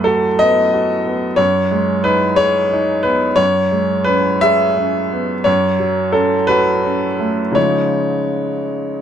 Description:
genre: neoclassical minimalist piano.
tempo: 58 BPM (dotted quarters).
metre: 6/8.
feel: uneven beats, rubato.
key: unclear.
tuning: A4 = 445 Hz.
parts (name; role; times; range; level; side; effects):
clear baby grand piano; solo; 0.0-9.0 s; F#2 to E5; -14 LUFS; equal; none.
room: little or no reverb.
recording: close, detailed microphones.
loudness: -13 LUFS.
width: side -9 dB against mid.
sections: 0.0-9.0 A section.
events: none.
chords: 0.0 B7/F#; 1.4 G#m7/F#; 3.4 C#m7/F#; 5.5 F#m; 7.6 C#add9.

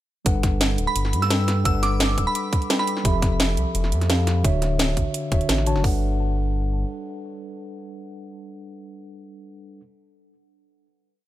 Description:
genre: liquid drum and bass.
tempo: 172 BPM.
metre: 4/4.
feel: straight.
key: unclear.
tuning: A4 = 440 Hz.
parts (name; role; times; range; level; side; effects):
mellow tine electric piano; accompaniment; 0.2-9.8 s; D3 to A5; -28 LUFS; equal; slow stereo tremolo, ping-pong delay.
smooth gliding synth bass; bass; 0.3-6.8 s; D1 to G2; -23 LUFS; equal; none.
drum and bass drum kit; drums; 0.3-5.9 s; hi-hat, kick drum; -22 LUFS; equal; overdrive, studio ambience.
drum and bass drum kit; drums; 0.3-5.8 s; hi-hat, snare drum; -25 LUFS; equal; overdrive, studio ambience.
glassy synth bell; melody; 0.9-3.1 s; B5 to E6; -27 LUFS; right 3 dB; chorus, ping-pong delay.
room: digital ambience.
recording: none.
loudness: -19 LUFS.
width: side -14 dB against mid.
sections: 0.3-5.8 drop; 5.8-8.6 final chord.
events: drop 0.3-5.8.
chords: 0.3 Gmaj9; 3.0 Fmaj9; 4.4 Dmaj9; 5.8 Gmaj9.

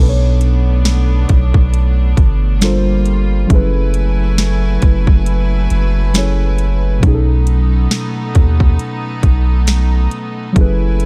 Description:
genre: contemporary R&B.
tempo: 68 BPM.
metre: 4/4.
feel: swing 58% on 16ths.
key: unclear.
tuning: A4 = 441 Hz.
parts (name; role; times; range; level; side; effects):
muted felt-like synth keys; accompaniment; 0.0-11.1 s; B2 to C#5; -22 LUFS; equal; chorus.
clear studio string section; sustained chords; 0.0-11.1 s; F#3 to G#5; -28 LUFS; equal; sidechain pumping.
long sustained 808-style bass; bass; 0.0-11.1 s; F#1 to D#2; -16 LUFS; equal; none.
trap drum kit; drums; 0.4-11.1 s; hi-hat, kick drum, snare drum; -14 LUFS; equal; none.
room: digital ambience.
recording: dark, warm production.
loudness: -14 LUFS.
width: mono.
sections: 0.0-11.1 A section.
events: none.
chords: 0.0 Bm9; 2.6 Gm11; 3.5 F#m11; 7.0 B9.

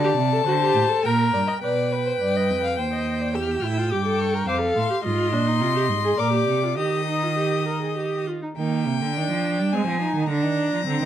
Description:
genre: classical, baroque-style fugue for string quartet.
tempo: 104 BPM.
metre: 3/4.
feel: straight.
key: Eb major from 5.0 s.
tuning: A4 = 440 Hz.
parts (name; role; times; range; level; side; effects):
rich violin; melody; 0.0-11.1 s; G5 to F6; -28 LUFS; left 9 dB; none.
warm violin; second line; 0.0-8.2 s; Bb4 to G5; -28 LUFS; left 4 dB; none.
warm viola; accompaniment; 0.0-11.1 s; Bb3 to C5; -25 LUFS; right 1 dB; none.
warm cello; bass; 0.0-11.1 s; Eb2 to Ab3; -25 LUFS; right 3 dB; none.
room: light reverb.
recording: dark, warm production.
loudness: -20 LUFS.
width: side -10 dB against mid.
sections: 0.0-1.6 A section; 1.6-8.6 B section; 8.6-11.1 A section.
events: none.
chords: 0.0 D5; 1.0 Gm/Bb; 1.6 G7/B; 2.8 Cm/Eb; 3.4 A7/E; 4.5 Dm/F (rootless); 5.0 Fm7/Ab; 6.2 Bb; 6.8 Eb; 9.7 Ab; 10.3 Bb/D.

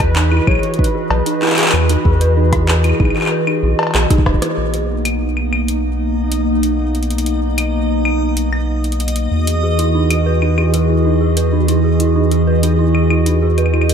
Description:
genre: IDM.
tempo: 95 BPM.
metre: 4/4.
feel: straight.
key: B major.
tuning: A4 = 435 Hz.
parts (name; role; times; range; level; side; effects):
warm velvety synth lead; melody; 0.0-3.9 s; B4 to C#5; -23 LUFS; left 1 dB; chorus, ping-pong delay.
warbly tape-like pad; sustained chords; 0.0-13.9 s; E3 to D#5; -18 LUFS; right 1 dB; chorus, built-in reverb.
dark detuned synth bell; arpeggios; 0.0-4.5, 9.6-13.9 s; D#4 to B4; -21 LUFS; right 2 dB; chorus, vintage 12-bit sampler grit, ping-pong delay.
rubbery square bass; bass; 0.0-13.9 s; E1 to E2; -16 LUFS; equal; none.
booming analog drum machine; drums; 0.0-13.9 s; claves, cowbell, handclaps, hi-hat, rim click; -21 LUFS; left 2 dB; none.
electronic kick drum; drums; 0.0-4.4 s; none; -16 LUFS; equal; none.
backwards swelling texture; texture; 5.8-13.9 s; D#5; -28 LUFS; left 1 dB; built-in reverb.
room: moderate lush hall reverb, RT60 2.2 s.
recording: dark, warm production.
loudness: -13 LUFS.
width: side -7 dB against mid.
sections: 0.0-4.6 A section; 4.6-13.9 B section.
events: drum fill 3.9-4.6; band accent 4.4-4.7.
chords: 0.0 Emaj9; 4.6 Bmaj7; 9.3 Emaj9.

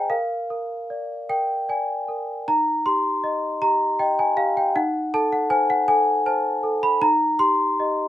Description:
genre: classical, lullaby for celesta.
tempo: 52 BPM (dotted quarters).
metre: 6/8.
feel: rubato.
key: Eb major.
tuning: A4 = 439 Hz.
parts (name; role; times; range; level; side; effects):
large celesta; solo; 0.0-8.1 s; Eb4 to C6; -20 LUFS; equal; none.
room: light reverb.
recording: minimal, uncompressed stereo recording.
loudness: -19 LUFS.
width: side -13 dB against mid.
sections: 0.0-8.1 A section.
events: none.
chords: 0.1 Bb; 2.5 Eb; 4.8 Ebdim7; 7.0 Eb.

